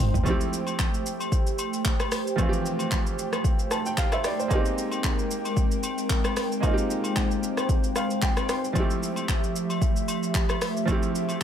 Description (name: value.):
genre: amapiano.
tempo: 113 BPM.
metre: 4/4.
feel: swing 55% on 16ths.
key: F major.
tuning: A4 = 440 Hz.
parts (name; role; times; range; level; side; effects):
clear baby grand piano; accompaniment; 0.0-11.4 s; E3 to C6; -30 LUFS; right 3 dB; none.
airy breathy pad; sustained chords; 0.0-11.4 s; F3 to C6; -30 LUFS; equal; chorus.
deep house drum kit; drums; 0.0-11.4 s; handclaps, hi-hat, kick drum, rim click, shaker, toms; -26 LUFS; equal; overdrive.
agogo bells and woodblock; percussion; 0.3-11.4 s; none; -37 LUFS; left 6 dB; analog delay.
room: digital ambience.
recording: echo-heavy mix.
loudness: -23 LUFS.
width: side -9 dB against mid.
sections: 0.3-11.4 A section.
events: drum fill 0.0; grand piano fill 3.4-4.5, 7.7-8.8.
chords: 0.3 Fmaj9; 4.5 Abmaj9; 8.8 Fmaj9.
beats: | 0.26 0.79 1.32 1.85 | 2.38 2.92 3.45 3.98 | 4.51 5.04 5.57 6.10 | 6.63 7.16 7.69 8.22 | 8.76 9.29 9.82 10.35 | 10.88 11.41.